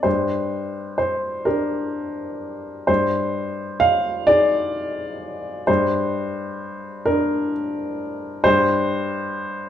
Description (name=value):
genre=neoclassical minimalist piano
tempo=43 BPM (dotted quarters)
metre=6/8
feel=rubato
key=G minor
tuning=A4 = 441 Hz
part: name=dark upright piano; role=solo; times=0.0-9.7 s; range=G2 to F5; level=-20 LUFS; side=equal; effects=none
room=moderate large studio reverb, RT60 1.1 s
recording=band playing live in one room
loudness=-19 LUFS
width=side -10 dB against mid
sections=0.0-9.7 A section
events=none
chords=0.1 Gm; 2.9 Ab/G; 5.7 Gmadd11; 8.4 Gsus4